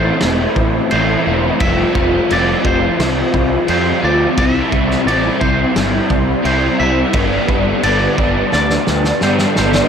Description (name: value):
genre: rock, shoegaze and dream pop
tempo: 87 BPM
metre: 4/4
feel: straight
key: C major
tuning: A4 = 440 Hz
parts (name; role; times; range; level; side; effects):
- twangy electric guitar; melody; 0.0-9.9 s; C5 to E5; -21 LUFS; right 1 dB; tape echo
- crunchy overdriven guitar; riff; 0.0-9.9 s; G2 to F4; -15 LUFS; equal; ensemble chorus
- fuzz picked electric bass; bass; 0.0-9.8 s; E1 to G2; -19 LUFS; equal; overdrive
- loose indie drum kit; drums; 0.2-9.9 s; crash cymbal, kick drum, snare drum; -20 LUFS; equal; none
room: wet huge ambient reverb, RT60 7.6 s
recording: dreamy mix soaked in reverb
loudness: -12 LUFS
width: side -7 dB against mid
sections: 0.0-9.9 A section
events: drum fill 8.5-9.9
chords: 0.0 Am; 1.6 Fsus2; 4.4 C; 7.1 G